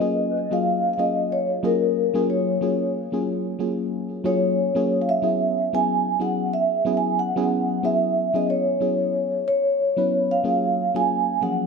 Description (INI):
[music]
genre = chillout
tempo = 92 BPM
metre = 4/4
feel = swing 56% on 16ths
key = F# major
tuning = A4 = 438 Hz
[part]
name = vibraphone with soft mallets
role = melody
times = 0.0-11.7 s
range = A#4 to G#5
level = -22 LUFS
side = equal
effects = tape echo
[part]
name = mellow FM electric piano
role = accompaniment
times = 0.0-11.7 s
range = E#3 to B4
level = -24 LUFS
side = left 1 dB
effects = chorus, auto-pan, cassette tape, tape echo
[sound]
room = moderate plate reverb, RT60 2.7 s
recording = none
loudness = -20 LUFS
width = side -5 dB against mid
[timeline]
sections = 0.0-11.7 A section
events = none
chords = 0.0 F#maj9; 5.2 E69; 10.4 F#maj9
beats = | 0.01 0.66 1.31 1.97 | 2.62 3.27 3.92 4.58 | 5.23 5.88 6.53 7.18 | 7.83 8.49 9.14 9.79 | 10.44 11.10